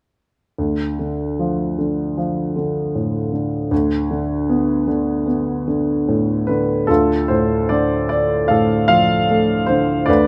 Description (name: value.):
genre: classical, lyrical solo piano.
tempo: 75 BPM.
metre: 4/4.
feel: rubato.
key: D dorian.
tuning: A4 = 440 Hz.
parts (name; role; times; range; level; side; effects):
clear baby grand piano; solo; 0.6-10.3 s; D2 to F5; -18 LUFS; equal; none.
room: light reverb.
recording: close, detailed microphones.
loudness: -19 LUFS.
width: mono.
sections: 0.6-6.9 A section; 6.9-10.3 B section.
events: none.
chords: 0.6 Dm; 3.7 Bm7/D; 6.9 Dm.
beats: | 0.58 1.38 2.17 2.95 | 3.71 4.49 5.27 6.07 | 6.89 7.70 8.49 9.29 | 10.08.